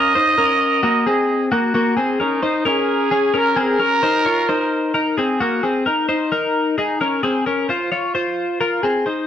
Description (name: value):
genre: indie pop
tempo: 131 BPM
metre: 4/4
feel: straight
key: Eb dorian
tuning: A4 = 440 Hz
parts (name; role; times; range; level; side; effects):
- growling trumpet; melody; 0.0-5.2 s; Eb4 to Eb5; -18 LUFS; right 3 dB; none
- twelve-string electric guitar; arpeggios; 0.0-9.3 s; Bb3 to Db5; -17 LUFS; left 2 dB; none
room: wet stone room reverb, RT60 1.0 s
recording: band playing live in one room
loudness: -16 LUFS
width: side -10 dB against mid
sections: 0.0-1.7 A section; 1.7-9.1 B section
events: none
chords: 0.0 Ebm7; 3.6 Abadd9; 5.4 Ebm; 7.2 Fm